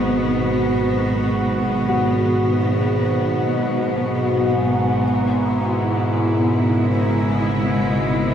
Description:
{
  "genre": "dark ambient drone",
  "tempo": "free time",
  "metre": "none",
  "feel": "none",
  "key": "G# minor",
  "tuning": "A4 = 439 Hz",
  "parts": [
    { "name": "rich symphonic cello section", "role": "sustained chords", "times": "0.0-8.3 s", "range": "B2 to E4", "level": "-21 LUFS", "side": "equal", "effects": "none" },
    { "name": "overtone-sweeping drone", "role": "drone", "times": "0.0-8.3 s", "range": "G#1 to G#2", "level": "-20 LUFS", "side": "right 1 dB", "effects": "chorus, built-in reverb, phaser" },
    { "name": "bubbling stepped-filter texture", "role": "texture", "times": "0.0-8.3 s", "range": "E4 to F#4", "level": "-25 LUFS", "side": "left 1 dB", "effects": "chorus, built-in reverb" },
    { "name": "dark baby grand piano", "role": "arpeggios", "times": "1.9-8.3 s", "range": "F#4", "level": "-31 LUFS", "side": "left 4 dB", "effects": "none" }
  ],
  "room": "wet cathedral reverb, RT60 4.6 s",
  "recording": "in a vast, echoing space",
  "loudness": "-17 LUFS",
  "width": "side -9 dB against mid",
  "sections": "0.0-8.3 A section",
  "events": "none",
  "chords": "0.0 G#m7; 5.0 C#m7/G#"
}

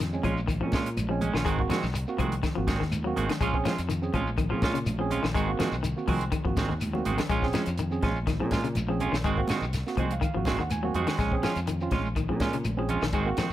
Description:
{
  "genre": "afrobeat",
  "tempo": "123 BPM",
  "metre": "4/4",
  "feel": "straight",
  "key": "Bb minor",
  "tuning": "A4 = 439 Hz",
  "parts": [
    { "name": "electric guitar at the edge of break-up", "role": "arpeggios", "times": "0.0-13.5 s", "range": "Db3 to Ab3", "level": "-33 LUFS", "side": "left 6 dB", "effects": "none" },
    { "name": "fingered electric bass", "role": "bass", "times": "0.0-13.5 s", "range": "Ab1 to Bb2", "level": "-31 LUFS", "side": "equal", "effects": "none" },
    { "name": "compact cocktail drum kit", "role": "drums", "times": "0.0-13.5 s", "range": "hi-hat, kick drum, snare drum", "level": "-32 LUFS", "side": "equal", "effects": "none" },
    { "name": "congas", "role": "percussion", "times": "0.0-13.5 s", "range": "none", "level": "-36 LUFS", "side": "right 2 dB", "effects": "none" },
    { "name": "shekere", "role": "percussion", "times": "0.0-13.5 s", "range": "none", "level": "-37 LUFS", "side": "left 2 dB", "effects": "none" },
    { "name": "barky tine electric piano", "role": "accompaniment", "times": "0.1-13.5 s", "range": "Ab3 to Ab5", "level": "-33 LUFS", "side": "right 5 dB", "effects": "none" },
    { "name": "semi-hollow electric guitar", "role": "stabs", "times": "0.2-13.5 s", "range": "Eb3 to Gb4", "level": "-32 LUFS", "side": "right 4 dB", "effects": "none" },
    { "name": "claves", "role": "percussion", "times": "0.2-13.5 s", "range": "none", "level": "-43 LUFS", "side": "left 7 dB", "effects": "none" }
  ],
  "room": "light reverb, studio reverb",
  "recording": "none",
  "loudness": "-25 LUFS",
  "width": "side -13 dB against mid",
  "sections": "0.0-13.5 A section",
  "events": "drum fill 6.9-7.3; tine electric piano fill 9.7-11.2",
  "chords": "0.0 Bbm7; 1.5 Ab7; 3.4 Bbm7; 5.4 Ab7; 7.3 Bbm7; 9.2 Ab7; 11.2 Bbm7"
}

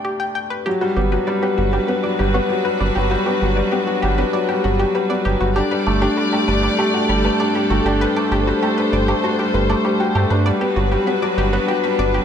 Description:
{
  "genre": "piano and strings electronica",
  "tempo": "98 BPM",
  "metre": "4/4",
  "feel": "straight",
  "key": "G major",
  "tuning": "A4 = 440 Hz",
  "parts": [
    { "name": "analog pluck", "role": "arpeggios", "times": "0.0-12.2 s", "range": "F#4 to G5", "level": "-24 LUFS", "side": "left 2 dB", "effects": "chorus, ping-pong delay" },
    { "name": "felt-muted upright piano", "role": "riff", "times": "0.0-12.2 s", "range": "F#3 to G5", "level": "-19 LUFS", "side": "left 1 dB", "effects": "ping-pong delay" },
    { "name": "dark chamber string section", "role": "sustained chords", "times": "0.7-12.2 s", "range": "D4 to D5", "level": "-23 LUFS", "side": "left 2 dB", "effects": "none" },
    { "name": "round analog bass", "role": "bass", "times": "1.0-12.2 s", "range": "G1 to G2", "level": "-20 LUFS", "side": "right 2 dB", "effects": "none" }
  ],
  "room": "moderate concert hall reverb, RT60 1.8 s",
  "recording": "none",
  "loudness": "-16 LUFS",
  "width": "side -8 dB against mid",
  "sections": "0.7-12.2 A section",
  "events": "break 0.0-0.7; drop 0.7-12.2",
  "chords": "0.0 Dsus4/G; 0.7 Gmaj7; 5.6 Dsus4/G; 10.5 Gmaj7"
}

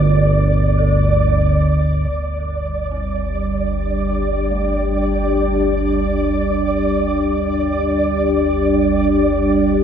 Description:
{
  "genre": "dark ambient drone",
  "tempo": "free time",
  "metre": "none",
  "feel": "none",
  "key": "G minor",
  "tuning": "A4 = 441 Hz",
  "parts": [
    { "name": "dark detuned synth bell", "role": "arpeggios", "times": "0.0-9.8 s", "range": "A3 to Bb4", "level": "-39 LUFS", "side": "equal", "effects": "none" },
    { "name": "analog drone", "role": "drone", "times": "0.0-9.8 s", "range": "G1 to D2", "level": "-19 LUFS", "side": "equal", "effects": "lush chorus" },
    { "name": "flickering grainy texture", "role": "texture", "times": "0.0-9.8 s", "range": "D5", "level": "-21 LUFS", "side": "right 2 dB", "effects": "built-in reverb" },
    { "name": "sweeping resonant pad", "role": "sustained chords", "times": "2.1-9.8 s", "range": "G3 to G4", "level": "-18 LUFS", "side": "left 1 dB", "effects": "chorus" }
  ],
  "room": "wet cathedral reverb, RT60 5.3 s",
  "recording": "none",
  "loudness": "-15 LUFS",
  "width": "side -8 dB against mid",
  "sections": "0.0-2.1 A section; 2.1-9.8 B section",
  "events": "filter sweep on synth drone 2.1-9.8",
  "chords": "0.0 Gm; 2.1 Gmadd9"
}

